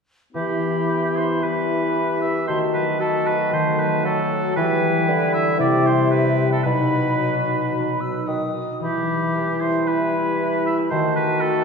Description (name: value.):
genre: classical.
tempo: 114 BPM.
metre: 4/4.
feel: rubato.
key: E minor.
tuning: A4 = 440 Hz.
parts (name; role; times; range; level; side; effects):
concert flute; second line; 0.3-11.6 s; G5 to E6; -28 LUFS; left 1 dB; none.
clear bassoon; accompaniment; 0.3-11.6 s; B2 to F#3; -25 LUFS; right 2 dB; none.
dark French horn section; sustained chords; 0.3-11.6 s; F#3 to F#4; -26 LUFS; left 1 dB; none.
concert harp; arpeggios; 0.3-11.6 s; B2 to B4; -26 LUFS; left 2 dB; none.
clear clarinet; second line; 0.4-11.6 s; D#4 to G4; -28 LUFS; left 3 dB; none.
clear oboe; second line; 0.4-11.6 s; G4 to E5; -25 LUFS; right 2 dB; none.
room: wet scoring stage reverb, RT60 1.9 s.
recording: heard from further back in the room.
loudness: -18 LUFS.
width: side -5 dB against mid.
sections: 0.4-11.6 A section.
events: none.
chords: 0.4 Em; 2.5 D#dim; 4.6 Em; 5.6 C; 6.7 B; 8.8 Em; 10.9 D#dim.